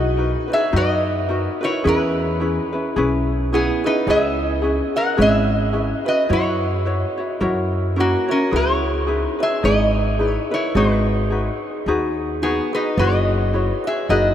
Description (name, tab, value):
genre	Hawaiian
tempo	108 BPM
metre	4/4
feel	swing 57% on 8ths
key	unclear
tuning	A4 = 440 Hz
part	lap resonator guitar	melody	0.0-14.3 s	A#3 to F#5	-21 LUFS	equal	none
part	kalimba	second line	0.0-14.3 s	C#4 to D#5	-28 LUFS	right 3 dB	none
part	ukulele	accompaniment	0.0-14.3 s	C#4 to C#5	-23 LUFS	left 2 dB	none
part	upright bass	bass	0.0-14.3 s	F#1 to F#2	-21 LUFS	equal	none
room	wet cathedral reverb, RT60 6.2 s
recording	in a vast, echoing space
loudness	-17 LUFS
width	side -10 dB against mid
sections	0.0-14.3 A section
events	none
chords	0.0 Bmaj7; 1.8 E6; 4.1 C#m7; 6.3 F#7sus4; 7.4 F#7; 8.5 C#m9; 10.8 G#m7; 13.0 F#7sus4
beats	0.17 0.73 1.28 | 1.84 2.40 2.96 3.52 | 4.07 4.63 5.18 5.74 | 6.30 6.86 7.41 7.97 | 8.53 9.08 9.64 10.20 | 10.75 11.31 11.87 12.42 | 12.98 13.54 14.10